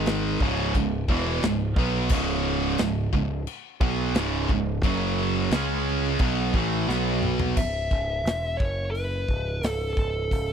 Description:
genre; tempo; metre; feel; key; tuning
heavy metal; 88 BPM; 4/4; straight; C# minor; A4 = 440 Hz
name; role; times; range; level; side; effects
heavy high-gain guitar; riff; 0.0-7.6 s; C#2 to C#4; -30 LUFS; left 14 dB; distortion
thick fuzz guitar; riff; 0.0-7.6 s; C#2 to C#4; -31 LUFS; left 1 dB; distortion
tight distorted guitar; riff; 0.0-7.6 s; C#2 to C#4; -28 LUFS; right 13 dB; distortion
growling picked electric bass; bass; 0.0-10.5 s; C#1 to C#2; -29 LUFS; equal; overdrive
modern studio drum kit; drums; 0.1-10.5 s; china cymbal, crash cymbal, hi-hat, kick drum, snare drum, toms; -26 LUFS; equal; none
high-gain lead guitar; melody; 7.6-10.5 s; A4 to E5; -28 LUFS; equal; distortion, slapback echo
room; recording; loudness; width
studio reverb; dry, close 1970s-style studio recording; -23 LUFS; side -8 dB against mid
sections
0.0-7.6 A section; 7.6-10.5 B section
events
drum fill 6.9-7.6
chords
0.4 C#m; 4.8 F#5; 5.5 C#m; 6.9 B5; 7.6 C#m; 8.6 F#5; 9.3 Aadd9/C#

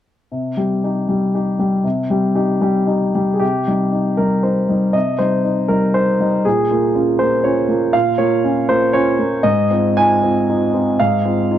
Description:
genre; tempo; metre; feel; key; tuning
neoclassical minimalist piano; 118 BPM; 3/4; rubato; unclear; A4 = 436 Hz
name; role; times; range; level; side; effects
warm baby grand piano; solo; 0.3-11.6 s; Ab2 to Ab5; -14 LUFS; equal; none
room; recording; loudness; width
light reverb; dark, warm production; -14 LUFS; side -11 dB against mid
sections
0.3-3.4 A section; 3.4-11.6 B section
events
none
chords
0.3 Cm; 6.5 Bbm7; 9.4 Fm7/Ab

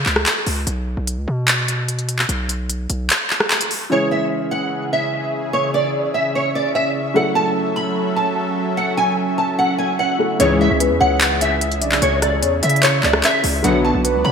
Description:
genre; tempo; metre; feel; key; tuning
hip hop, trap; 148 BPM; 4/4; half-time; C# phrygian; A4 = 440 Hz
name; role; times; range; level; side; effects
distorted 808-style bass; bass; 0.0-3.1, 10.4-14.3 s; B1 to C#3; -22 LUFS; equal; distortion
trap drum kit; drums; 0.1-3.8, 10.4-14.1 s; handclaps, hi-hat, rim click; -18 LUFS; equal; gated reverb
nylon-string guitar; melody; 3.9-14.3 s; C#5 to B5; -19 LUFS; right 1 dB; ensemble chorus
felt-muted upright piano; accompaniment; 3.9-14.3 s; C#3 to B4; -23 LUFS; equal; none
warm analog pad; sustained chords; 4.3-14.3 s; C#3 to F#5; -25 LUFS; right 1 dB; chorus
sync-sweep polysynth; stabs; 10.4-10.7, 13.6-13.9 s; G#2 to F#3; -22 LUFS; left 5 dB; chorus
soft octave-layered synth lead; second line; 10.8-14.3 s; B4 to E5; -24 LUFS; left 2 dB; chorus, phaser, ping-pong delay
room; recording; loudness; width
wet lush hall reverb, RT60 2.0 s; bright 1980s-style digital production; -16 LUFS; side -6 dB against mid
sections
0.0-3.9 A section; 3.9-14.3 B section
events
break 0.0-3.9; kick muted 3.1-3.9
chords
0.0 N.C.; 3.9 C#m; 7.2 F#m7; 10.4 C#m; 13.6 Bm

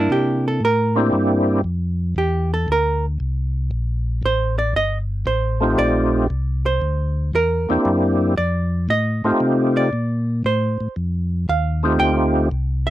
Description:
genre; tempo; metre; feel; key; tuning
jazz; 116 BPM; 4/4; swing 69% on 8ths; unclear; A4 = 440 Hz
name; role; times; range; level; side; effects
hollow-body jazz guitar; accompaniment; 0.0-12.9 s; Bb3 to G5; -21 LUFS; right 2 dB; none
mellow tonewheel organ; bass; 0.0-12.9 s; G1 to C3; -21 LUFS; equal; slow rotary speaker
percussive tonewheel organ; melody; 1.0-1.6, 5.6-12.5 s; A3 to G4; -17 LUFS; equal; slow rotary speaker, overdrive, chorus vibrato
room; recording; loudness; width
little or no reverb; dry, close 1970s-style studio recording; -17 LUFS; side -14 dB against mid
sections
0.1-12.9 A section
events
hollow-body jazz guitar solo 0.1-12.9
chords
0.1 C9; 4.2 F9; 6.3 C9; 8.4 F9

